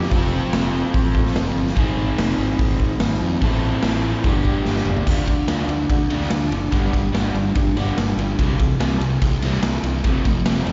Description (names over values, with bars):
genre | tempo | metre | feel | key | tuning
classic rock | 145 BPM | 4/4 | straight | unclear | A4 = 440 Hz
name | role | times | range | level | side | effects
crunchy overdriven guitar | riff | 0.0-10.7 s | G2 to A4 | -25 LUFS | equal | slapback echo
fuzz fingered electric bass | bass | 0.0-10.7 s | F1 to F2 | -26 LUFS | equal | overdrive
raw garage drum kit | drums | 0.0-10.7 s | crash cymbal, hi-hat, kick drum, ride cymbal, snare drum, toms | -24 LUFS | equal | none
room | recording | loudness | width
light reverb | live gig heard through the venue's PA, recital hall reverb, nothing above 7.6 kHz | -20 LUFS | mono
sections
0.0-5.1 A section; 5.1-10.7 B section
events
drum fill 4.7-5.1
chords
0.1 F; 1.8 Ab; 3.4 Am; 4.2 G; 5.1 Dm; 6.7 G; 8.4 C; 10.0 F